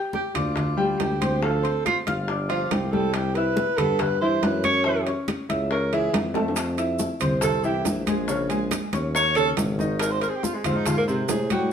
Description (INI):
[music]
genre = Afro-Cuban jazz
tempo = 140 BPM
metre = 4/4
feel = straight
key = unclear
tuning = A4 = 440 Hz
[part]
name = clear concert grand piano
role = accompaniment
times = 0.0-11.7 s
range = C3 to G6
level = -27 LUFS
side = left 1 dB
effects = none
[part]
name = breathy tenor saxophone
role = melody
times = 0.1-11.7 s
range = Ab3 to C#5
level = -25 LUFS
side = right 3 dB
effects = none
[part]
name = bongos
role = percussion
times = 0.1-11.7 s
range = none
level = -34 LUFS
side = left 4 dB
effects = none
[part]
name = congas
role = percussion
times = 0.1-11.7 s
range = none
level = -30 LUFS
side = left 2 dB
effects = none
[part]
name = timbales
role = percussion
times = 0.1-11.7 s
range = none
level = -31 LUFS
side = right 6 dB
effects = none
[part]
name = warm tuba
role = bass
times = 0.3-11.7 s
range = G1 to A2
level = -28 LUFS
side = equal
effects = none
[part]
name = maracas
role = percussion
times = 6.6-11.7 s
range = none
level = -36 LUFS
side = right 5 dB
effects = none
[sound]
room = wet studio reverb, RT60 0.8 s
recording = band playing live in one room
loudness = -21 LUFS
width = side -8 dB against mid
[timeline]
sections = 0.0-11.7 A section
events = tenor saxophone solo 0.0-11.7; drum fill 6.4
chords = 0.0 G5; 3.1 Cmaj7; 4.9 F#5; 6.6 Fmaj7; 8.3 Bbm7; 9.1 Eb5; 10.0 Ab6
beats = 0.14 0.57 0.99 | 1.42 1.85 2.28 2.71 | 3.14 3.57 4.00 4.43 | 4.86 5.29 5.71 6.14 | 6.57 7.00 7.43 7.86 | 8.29 8.72 9.15 9.58 | 10.01 10.44 10.86 11.29 | 11.72